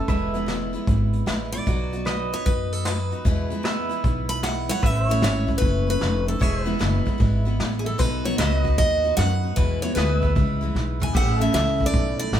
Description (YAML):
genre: honky-tonk and classic country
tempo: 152 BPM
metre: 4/4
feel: swing 66% on 8ths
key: A major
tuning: A4 = 440 Hz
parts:
  - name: picked steel-string acoustic guitar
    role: melody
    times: 0.0-12.4 s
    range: G#4 to B5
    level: -27 LUFS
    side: equal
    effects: none
  - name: picked steel-string acoustic guitar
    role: accompaniment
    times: 0.0-12.4 s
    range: E2 to F#4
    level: -28 LUFS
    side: equal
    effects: none
  - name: pedal steel guitar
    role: sustained chords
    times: 0.0-12.4 s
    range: A4 to E5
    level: -31 LUFS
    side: right 4 dB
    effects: none
  - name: upright bass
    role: bass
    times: 0.0-12.4 s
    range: E1 to F#2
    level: -24 LUFS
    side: equal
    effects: none
  - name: vintage brush drum kit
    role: drums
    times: 0.1-12.4 s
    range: crash cymbal, hi-hat, kick drum, snare drum, toms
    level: -25 LUFS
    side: equal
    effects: none
room: moderate studio reverb, RT60 0.7 s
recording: band playing live in one room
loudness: -20 LUFS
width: side -10 dB against mid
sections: 0.0-4.8 A section; 4.8-12.4 B section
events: steel-string acoustic guitar solo 0.0-4.8; drum fill 10.8-11.2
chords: 0.1 E; 1.7 B; 3.3 E; 4.8 A; 6.4 E; 8.0 B; 9.6 E; 11.2 A